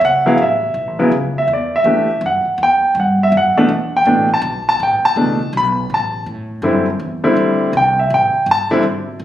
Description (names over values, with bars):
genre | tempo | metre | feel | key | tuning
modal jazz | 163 BPM | 3/4 | swing 65% on 8ths | A dorian from 5.9 s | A4 = 440 Hz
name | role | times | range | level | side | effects
warm baby grand piano | accompaniment | 0.0-8.8 s | B2 to B5 | -13 LUFS | equal | none
upright bass | bass | 0.0-9.2 s | E1 to A2 | -23 LUFS | equal | none
room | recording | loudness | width
moderate large studio reverb, RT60 0.9 s | recorded on a phone in the room, club reverb | -13 LUFS | side -12 dB against mid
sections
0.0-5.9 A section; 5.9-9.2 A section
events
none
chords
0.0 A; 1.5 Em9; 3.7 A; 5.9 Am11